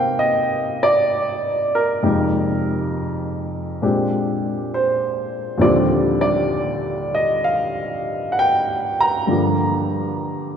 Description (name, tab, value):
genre	solo jazz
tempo	66 BPM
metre	4/4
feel	swing 68% on 8ths, rubato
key	unclear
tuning	A4 = 440 Hz
part	warm baby grand piano	solo	0.0-10.6 s	Eb2 to Bb5	-18 LUFS	equal	none
room	wet church reverb, RT60 3.6 s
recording	recorded in a church or concert hall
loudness	-18 LUFS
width	side -8 dB against mid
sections	0.0-10.6 A section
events	none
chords	0.0 Cm9; 2.0 Fm11; 3.8 Bb13; 5.6 Ebmaj13; 9.3 Gm7